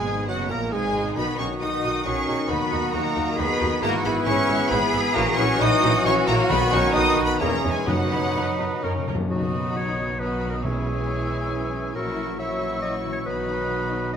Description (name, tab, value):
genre	classical, dramatic, fast romantic movement for symphony orchestra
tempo	136 BPM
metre	3/4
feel	rubato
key	B major from 3.8 s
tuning	A4 = 435 Hz
part	bright chamber violin section	melody	0.0-14.2 s	F#5 to D#6	-31 LUFS	equal	none
part	clear clarinet	second line	0.0-14.2 s	F#4 to E5	-32 LUFS	left 1 dB	none
part	clear symphonic violin section	second line	0.0-14.2 s	E4 to D#5	-34 LUFS	left 3 dB	none
part	mellow cor anglais	second line	0.0-14.2 s	F#4 to D#5	-34 LUFS	right 3 dB	none
part	mellow silver concert flute	second line	0.0-14.2 s	F#5 to E6	-32 LUFS	left 2 dB	none
part	clear studio viola section	accompaniment	0.0-14.2 s	F#3 to B4	-33 LUFS	right 1 dB	none
part	dark bassoon	accompaniment	0.0-14.2 s	D#3 to A#3	-34 LUFS	right 1 dB	none
part	clear trombone section	sustained chords	0.0-14.2 s	F#2 to D#4	-33 LUFS	right 5 dB	none
part	warm French horn section	sustained chords	0.0-14.2 s	F#3 to F#4	-29 LUFS	left 2 dB	none
part	concert harp	arpeggios	0.0-14.2 s	E2 to D#6	-32 LUFS	left 9 dB	none
part	warm trumpet section	stabs	0.0-9.1 s	E4 to B4	-31 LUFS	equal	none
part	clear symphonic cello section	bass	0.0-14.2 s	A#2 to G#4	-31 LUFS	right 3 dB	none
part	clear symphonic double bass section	bass	0.0-14.2 s	F#1 to F#2	-30 LUFS	right 3 dB	none
part	timpani	percussion	0.0-0.5, 6.5-11.3 s	F#2 to B2	-31 LUFS	equal	none
room	moderate recital hall reverb, RT60 1.4 s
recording	none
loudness	-20 LUFS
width	side -8 dB against mid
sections	0.0-9.3 A section; 9.3-14.2 B section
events	timpani fill 8.8-9.3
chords	0.0 G#m; 1.2 B; 2.5 B/D#; 3.8 E/G#; 5.2 F#7/A#; 6.5 B; 7.4 C#m/E; 7.9 B/F#; 8.8 F#; 9.3 B; 10.6 C#m7/B; 11.9 F#7/A#; 13.3 B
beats	0.29 0.73 | 1.17 1.61 2.06 | 2.50 2.94 3.38 | 3.83 4.27 4.71 | 5.16 5.61 6.06 | 6.50 6.95 7.41 | 7.88 8.36 8.83 | 9.30 9.75 10.19 | 10.63 11.07 11.51 | 11.94 12.38 12.82 | 13.26 13.70 14.14